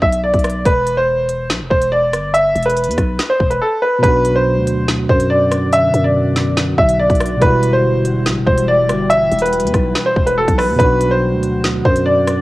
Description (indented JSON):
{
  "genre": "hip hop, drill",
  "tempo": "142 BPM",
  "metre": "4/4",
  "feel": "half-time",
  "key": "B phrygian",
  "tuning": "A4 = 439 Hz",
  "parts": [
    { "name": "bright concert grand piano", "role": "melody", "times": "0.0-12.4 s", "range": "A4 to E5", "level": "-15 LUFS", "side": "equal", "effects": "low-pass filter, cassette tape" },
    { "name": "growling 808-style bass", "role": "bass", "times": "0.0-12.4 s", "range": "E1 to F#2", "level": "-21 LUFS", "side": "equal", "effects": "none" },
    { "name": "drill drum kit", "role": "drums", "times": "0.0-12.4 s", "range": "hi-hat, kick drum, rim click, snare drum", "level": "-18 LUFS", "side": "equal", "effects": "cassette tape" },
    { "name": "tine electric piano", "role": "accompaniment", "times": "4.0-12.4 s", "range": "B2 to F#4", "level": "-19 LUFS", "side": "right 1 dB", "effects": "medium stereo tremolo, low-pass filter, cassette tape" },
    { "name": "glassy FM pad", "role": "sustained chords", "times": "4.8-12.4 s", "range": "B2 to F#4", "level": "-24 LUFS", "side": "equal", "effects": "ensemble chorus, built-in reverb, cassette tape" }
  ],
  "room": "light reverb",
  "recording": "home recording on cassette",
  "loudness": "-12 LUFS",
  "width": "side -18 dB against mid",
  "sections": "0.0-4.0 A section; 4.0-12.4 B section",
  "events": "none",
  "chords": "0.0 Bm; 0.7 E5; 4.0 Bm; 7.4 Emadd9; 10.8 Bm"
}